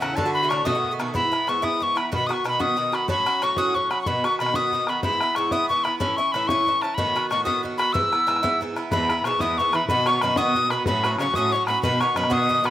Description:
celtic folk, Celtic jig; 124 BPM (dotted quarters); 6/8; straight; E major; A4 = 440 Hz
tin whistle; melody; 0.0-12.7 s; F#5 to E6; -22 LUFS; left 1 dB
mandolin; second line; 0.0-1.1, 8.9-12.7 s; F#4 to D#5; -32 LUFS; right 4 dB
Irish bouzouki; accompaniment; 0.0-12.7 s; G#2 to F#4; -26 LUFS; right 2 dB
rich cello; bass; 0.0-1.1, 8.9-12.7 s; E2 to E3; -30 LUFS; right 1 dB
bodhran; percussion; 0.0-12.7 s; -30 LUFS; left 2 dB
light reverb, small room ambience; rough home demo mix; -20 LUFS; side -13 dB against mid
0.0-1.1 A section; 1.1-8.9 B section; 8.9-12.7 B section
0.2 D; 0.7 B7; 1.1 E; 2.1 B; 3.1 F#m/A; 4.1 B; 5.0 E; 6.0 A; 7.0 B7; 7.9 E; 9.9 B; 10.9 F#m/A; 11.8 B
| 0.18 0.66 | 1.15 1.63 | 2.12 2.60 | 3.09 3.57 | 4.06 4.54 | 5.03 5.51 | 6.00 6.49 | 6.97 7.46 | 7.94 8.43 | 8.91 9.40 | 9.88 10.37 | 10.86 11.34 | 11.83 12.31

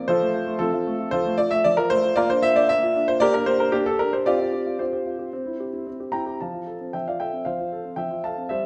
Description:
classical-period piano sonatina; 114 BPM; 4/4; straight; F major; A4 = 440 Hz
warm grand piano; solo; 0.0-8.7 s; F3 to Bb5; -23 LUFS; equal
moderate recital hall reverb, RT60 1.3 s; -23 LUFS; mono
0.0-6.4 A section; 6.4-8.7 B section
0.1 F; 2.2 Bb; 3.2 Gm/Bb; 4.3 Csus4; 5.3 C; 6.4 F
| 0.09 0.61 1.13 1.65 | 2.16 2.68 3.20 3.73 | 4.27 4.80 5.33 5.87 | 6.41 6.94 7.46 7.99 | 8.51

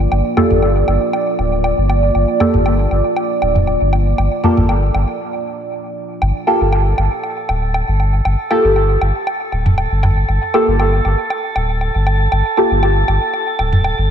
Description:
dub techno; 118 BPM; 4/4; swing 54% on 16ths; G minor; A4 = 440 Hz
deep dark ambient pad; sustained chords; 0.0-6.2 s; Bb3 to D5; -19 LUFS; right 2 dB; chorus, built-in reverb
warm sub bass; bass; 0.0-14.1 s; D1 to G1; -16 LUFS; equal; tube saturation
electronic woodblock and toms; percussion; 0.1-14.0 s; -21 LUFS; equal; dub echo
deep mellow chord stab; stabs; 0.4-12.8 s; Bb3 to A4; -17 LUFS; equal; chorus, phaser, dub echo
drifting glass-harmonics texture; texture; 6.7-14.1 s; A4; -22 LUFS; right 3 dB; chorus, built-in reverb
moderate lush hall reverb, RT60 2.5 s; dreamy mix soaked in reverb; -13 LUFS; side -8 dB against mid
0.0-6.2 A section; 6.2-14.1 A section
filter sweep on synth stab 0.0-6.2; break 5.2-6.2
0.0 Gm9
| 0.12 0.62 1.13 1.64 | 2.15 2.66 3.17 3.67 | 4.18 4.69 5.20 5.71 | 6.22 6.73 7.23 7.74 | 8.25 8.76 9.27 9.78 | 10.29 10.79 11.30 11.81 | 12.32 12.83 13.34 13.84

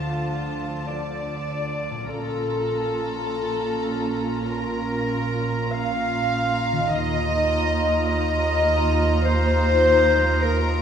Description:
cinematic, emotional film score for orchestra; 51 BPM (dotted quarters); 6/8; rubato; A4 = 440 Hz
warm studio violin section; melody; 0.0-10.8 s; A5 to Bb5; -34 LUFS; equal
warm clarinet; second line; 0.0-10.8 s; F4 to F5; -26 LUFS; right 1 dB
warm studio violin section; second line; 0.0-10.8 s; F4 to F5; -26 LUFS; left 3 dB
dark studio viola section; accompaniment; 0.0-10.8 s; F3 to F4; -29 LUFS; right 1 dB
concert harp; arpeggios; 0.0-10.8 s; Bb2 to Bb4; -36 LUFS; left 5 dB
dark studio double bass section; bass; 0.0-10.8 s; Bb1 to Eb2; -28 LUFS; right 1 dB
warm studio cello section; bass; 0.0-10.8 s; Eb2 to D3; -30 LUFS; right 4 dB
wet scoring stage reverb, RT60 1.5 s; heard from further back in the room; -20 LUFS; side -8 dB against mid
0.0-10.8 A section
0.0 Dm; 2.1 Bbm; 6.9 Ebsus2
0.89 | 2.10 3.28 | 4.47 5.72 | 6.90 8.07 | 9.25 10.41

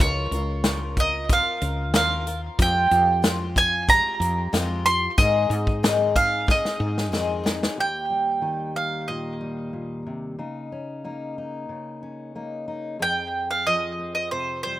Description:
indie folk with a building arrangement; 92 BPM; 4/4; straight; Eb mixolydian; A4 = 441 Hz
bowl-back mandolin; melody; 0.0-14.8 s; C5 to C6; -22 LUFS; right 2 dB; tape echo
picked twelve-string acoustic guitar; accompaniment; 0.0-7.8 s; Ab2 to Bb4; -28 LUFS; left 6 dB
woody fretless electric bass; bass; 0.0-7.7 s; Db2 to Ab2; -27 LUFS; equal
natural country drum kit; drums; 0.0-7.8 s; hi-hat, kick drum, snare drum; -23 LUFS; equal
fingerpicked steel-string acoustic guitar; accompaniment; 7.8-14.8 s; Eb2 to Ab4; -32 LUFS; left 2 dB
studio reverb; rough home demo mix; -20 LUFS; side -14 dB against mid
0.0-7.8 A section; 7.8-14.8 B section
drum fill 6.5-7.8
0.0 Bbmadd9/Db; 2.6 Fmadd9; 5.2 Ab; 7.8 Eb; 10.4 Bbm/Db; 13.0 Fmadd9
| 0.00 0.65 1.29 1.94 | 2.59 3.23 3.88 4.53 | 5.17 5.82 6.47 7.12 | 7.77 8.42 9.08 9.73 | 10.38 11.04 11.70 12.35 | 13.01 13.66 14.32

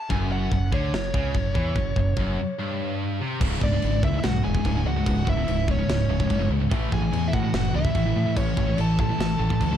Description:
heavy metal; 145 BPM; 4/4; straight; C# phrygian; A4 = 440 Hz
smooth overdriven lead guitar; melody; 0.0-9.8 s; C#5 to A5; -31 LUFS; equal; digital delay
heavy high-gain guitar; riff; 0.1-9.8 s; C#2 to A3; -29 LUFS; left 11 dB; distortion
scooped high-gain guitar; riff; 0.1-9.8 s; C#2 to A3; -28 LUFS; right 7 dB; distortion
growling fingered electric bass; bass; 0.1-9.8 s; C#1 to A2; -27 LUFS; equal; overdrive
tight metal drum kit; drums; 0.1-9.7 s; china cymbal, crash cymbal, kick drum, snare drum; -28 LUFS; equal
dark smooth lead guitar; second line; 3.6-9.8 s; C#4 to A4; -36 LUFS; right 6 dB; overdrive, digital delay
studio reverb; dark, warm production; -21 LUFS; side -10 dB against mid
0.0-3.4 A section; 3.4-9.8 B section
break 2.6-3.4
0.1 F#5; 3.4 C#m; 6.7 A
| 0.10 0.52 0.93 1.35 | 1.76 2.17 2.59 3.00 | 3.42 3.83 4.24 4.66 | 5.07 5.48 5.89 6.31 | 6.72 7.13 7.54 7.96 | 8.37 8.78 9.20 9.61

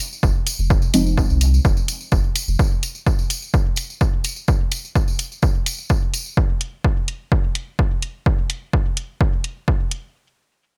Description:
dub techno; 127 BPM; 4/4; straight; F minor; A4 = 439 Hz
tambourine; percussion; 0.0-6.3 s; -31 LUFS; equal
pure sine sub bass; bass; 0.2-2.6 s; F1 to C2; -21 LUFS; equal; sidechain pumping
electronic kick drum; drums; 0.2-9.8 s; -20 LUFS; equal
electronic hi-hat; drums; 0.5-10.0 s; -28 LUFS; equal
deep mellow chord stab; stabs; 0.9-2.0 s; F3 to Eb4; -24 LUFS; equal; chorus, phaser, cassette tape, sidechain pumping, dub echo
digital ambience; bright 1980s-style digital production; -20 LUFS; mono
0.0-10.2 A section
filter sweep on synth stab 0.0-2.6
0.0 Fm7
0.23 | 0.70 1.18 1.65 2.12 | 2.59 3.06 3.54 4.01 | 4.48 4.95 5.43 5.90 | 6.37 6.84 7.32 7.79 | 8.26 8.73 9.21 9.68

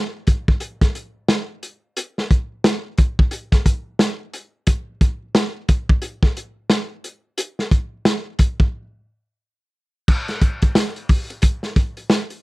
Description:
funk; 89 BPM; 4/4; swing 60% on 16ths
crunchy breakbeat drum kit; drums; 0.3-12.4 s; crash cymbal, hi-hat, kick drum, snare drum; -16 LUFS; equal
little or no reverb; dry, close 1970s-style studio recording; -18 LUFS; side -20 dB against mid
0.0-10.1 A section; 10.1-12.4 B section
break 8.7-10.1
0.62 1.29 | 1.97 2.65 3.32 4.00 | 4.67 5.35 6.03 6.70 | 7.38 8.05 8.73 9.40 | 10.08 10.75 11.43 12.10

